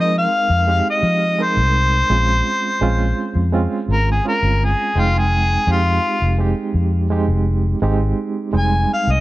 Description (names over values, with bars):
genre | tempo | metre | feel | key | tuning
straight-eighth soul blues | 84 BPM | 4/4 | straight | F minor | A4 = 440 Hz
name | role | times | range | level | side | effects
mellow harmonica | melody | 0.0-9.2 s | F4 to Ab5 | -19 LUFS | left 1 dB | none
barky reed electric piano | accompaniment | 0.0-9.2 s | G3 to G5 | -22 LUFS | right 4 dB | overdrive, fast tremolo
vintage muted fingered electric bass | bass | 0.0-9.2 s | F1 to F3 | -17 LUFS | equal | none
room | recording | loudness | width
small room ambience | none | -15 LUFS | side -17 dB against mid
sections
0.0-9.2 A section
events
harmonica solo 0.0-9.2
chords
0.0 Fm7; 2.1 Bbm7; 5.0 Fm7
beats
0.67 1.39 | 2.10 2.82 3.53 4.25 | 4.96 5.68 6.39 7.11 | 7.82 8.54